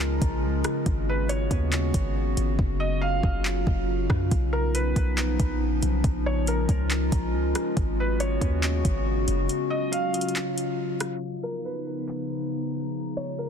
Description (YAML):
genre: hip hop, atmospheric cloud-rap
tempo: 139 BPM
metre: 4/4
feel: half-time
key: B lydian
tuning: A4 = 440 Hz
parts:
  - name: felt-muted upright piano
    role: melody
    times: 0.0-13.5 s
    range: A#4 to E#5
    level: -33 LUFS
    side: right 2 dB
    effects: digital delay
  - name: warbly tape-like pad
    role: sustained chords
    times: 0.0-13.5 s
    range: C#3 to A#5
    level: -28 LUFS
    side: left 1 dB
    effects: chorus, built-in reverb, sidechain pumping
  - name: warm 808-style bass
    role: bass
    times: 0.0-9.5 s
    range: F#1 to F#2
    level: -26 LUFS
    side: equal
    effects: none
  - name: smooth R&B drum kit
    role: drums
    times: 0.0-12.2 s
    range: handclaps, hi-hat, kick drum, rim click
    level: -28 LUFS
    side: equal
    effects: none
room: digital ambience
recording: dense, heavily limited modern master, low-pass filter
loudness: -23 LUFS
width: side -7 dB against mid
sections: 0.0-11.2 A section; 11.2-13.5 B section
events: hi-hats muted 2.6-4.3; break 9.5-11.2, 11.2-13.5; filter sweep 11.2-13.5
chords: 0.0 A#m7; 0.9 G#m7; 2.6 F#5; 4.3 Bmaj9#11; 6.0 A#m7; 7.8 G#m7; 9.5 F#5; 11.2 Bmaj9#11; 12.9 A#m7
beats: 0.00 0.43 | 0.86 1.29 1.72 2.16 | 2.59 3.02 3.45 3.88 | 4.31 4.75 5.18 5.61 | 6.04 6.47 6.90 7.34 | 7.77 8.20 8.63 9.06 | 9.49 9.93 10.36 10.79 | 11.22 11.65 12.08 12.52 | 12.95 13.38